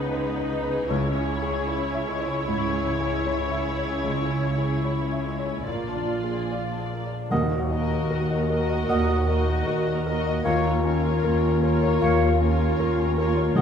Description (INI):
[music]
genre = cinematic, emotional film score for orchestra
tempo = 76 BPM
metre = 4/4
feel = rubato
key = C# minor, Eb minor from 7.3 s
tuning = A4 = 440 Hz
[part]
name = muted symphonic violin section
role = melody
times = 0.0-13.6 s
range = B4 to Eb5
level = -32 LUFS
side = left 4 dB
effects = none
[part]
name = muted symphonic violin section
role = second line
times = 0.0-13.6 s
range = G#3 to Bb4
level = -34 LUFS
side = left 3 dB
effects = none
[part]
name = muted symphonic viola section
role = accompaniment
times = 0.0-13.6 s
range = D#4 to Gb4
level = -32 LUFS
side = right 2 dB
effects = none
[part]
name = warm baby grand piano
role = accompaniment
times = 0.0-13.6 s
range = A#1 to E#5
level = -31 LUFS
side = left 2 dB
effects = none
[part]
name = concert harp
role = arpeggios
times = 0.0-13.6 s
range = A#2 to Bb4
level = -31 LUFS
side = left 4 dB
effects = none
[part]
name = muted symphonic cello section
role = bass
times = 0.0-13.6 s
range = Eb2 to C#3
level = -30 LUFS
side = right 3 dB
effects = none
[part]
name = muted symphonic double bass section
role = bass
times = 0.0-13.6 s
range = A#1 to Eb2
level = -29 LUFS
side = right 2 dB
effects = none
[part]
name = dark clarinet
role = second line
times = 7.3-13.6 s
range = Bb4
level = -34 LUFS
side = right 3 dB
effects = none
[part]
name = mellow hollow silver concert flute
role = second line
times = 7.3-13.6 s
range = F5 to Gb5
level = -31 LUFS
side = equal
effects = none
[part]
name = warm oboe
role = second line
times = 7.3-13.6 s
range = Db5 to Eb5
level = -33 LUFS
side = right 1 dB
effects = none
[part]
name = mellow French horn section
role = sustained chords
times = 7.3-13.6 s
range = Gb3 to Gb4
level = -28 LUFS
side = left 4 dB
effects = none
[part]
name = timpani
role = percussion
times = 7.3-8.5, 13.6 s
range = Eb3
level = -28 LUFS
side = equal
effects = none
[sound]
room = wet recital hall reverb, RT60 1.4 s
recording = recorded in a church or concert hall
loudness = -22 LUFS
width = side -7 dB against mid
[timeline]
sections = 0.0-7.3 A section; 7.3-13.6 A section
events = none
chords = 0.0 G#m/C#; 0.9 C#m; 5.7 A#7; 7.3 Ebm; 10.5 Bbm/Eb